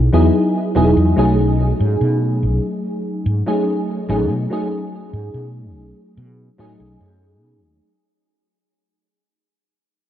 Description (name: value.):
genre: vaporwave.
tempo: 72 BPM.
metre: 4/4.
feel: straight.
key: unclear.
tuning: A4 = 440 Hz.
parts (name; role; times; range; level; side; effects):
mellow FM electric piano; accompaniment; 0.0-7.9 s; F#3 to G#4; -18 LUFS; equal; ensemble chorus, cassette tape, tape echo.
fretless electric bass; bass; 0.0-7.8 s; E1 to B2; -17 LUFS; equal; none.
room: light reverb.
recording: cassette tape.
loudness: -15 LUFS.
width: side -11 dB against mid.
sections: 0.0-7.8 A section.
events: fade-out 0.0-7.8.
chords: 0.0 Emaj9; 1.2 B13.